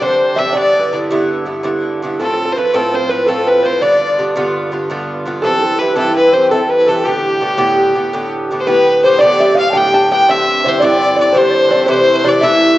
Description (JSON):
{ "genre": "celtic folk, Celtic slip jig", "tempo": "111 BPM (dotted quarters)", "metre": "9/8", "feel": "straight", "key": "G mixolydian", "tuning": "A4 = 438 Hz", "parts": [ { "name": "bright fiddle", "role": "melody", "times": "0.0-12.8 s", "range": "G4 to G5", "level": "-14 LUFS", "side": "equal", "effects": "none" }, { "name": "open-back banjo", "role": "second line", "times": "0.0-12.8 s", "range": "G4 to A5", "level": "-18 LUFS", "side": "right 2 dB", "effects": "slapback echo" }, { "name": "wooden flute", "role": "second line", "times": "0.0-12.8 s", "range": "G4 to A5", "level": "-19 LUFS", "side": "left 4 dB", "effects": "none" }, { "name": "Irish bouzouki", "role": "accompaniment", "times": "0.0-12.8 s", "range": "G2 to G4", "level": "-16 LUFS", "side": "right 1 dB", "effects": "none" } ], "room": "wet recital hall reverb, RT60 1.6 s", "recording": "worn, warbling old tape, cassette tape, warbly pitch drift, nothing above 7.9 kHz", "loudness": "-11 LUFS", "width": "side -15 dB against mid", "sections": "0.0-8.7 A section; 8.7-12.8 B section", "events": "none", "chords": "0.0 Gsus4; 0.6 Em7; 2.2 F; 3.8 G7; 5.4 C; 7.0 Gadd9; 10.3 Cadd9/G; 11.9 Am" }